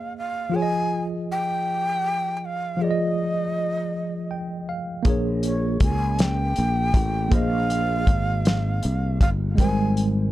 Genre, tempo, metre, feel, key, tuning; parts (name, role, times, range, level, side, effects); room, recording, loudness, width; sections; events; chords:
slow six-eight R&B; 53 BPM (dotted quarters); 6/8; straight; Bb dorian; A4 = 439 Hz
breathy long shakuhachi; melody; 0.0-10.0 s; Db5 to Ab5; -27 LUFS; equal
mellow tine electric piano; accompaniment; 0.0-10.3 s; F3 to G5; -27 LUFS; right 1 dB; medium stereo tremolo
cloth-damped thuddy drum kit; drums; 5.0-10.1 s; hi-hat, kick drum, snare drum; -21 LUFS; equal
sustaining fretless electric bass; bass; 5.1-10.3 s; G1 to Db2; -23 LUFS; equal; analog chorus
little or no reverb; dark, warm production; -21 LUFS; side -15 dB against mid
0.0-10.3 A section
tine electric piano fill 3.9-5.1
0.0 Bbm9; 0.5 Fm7; 5.1 Bbm9; 9.6 Abmaj9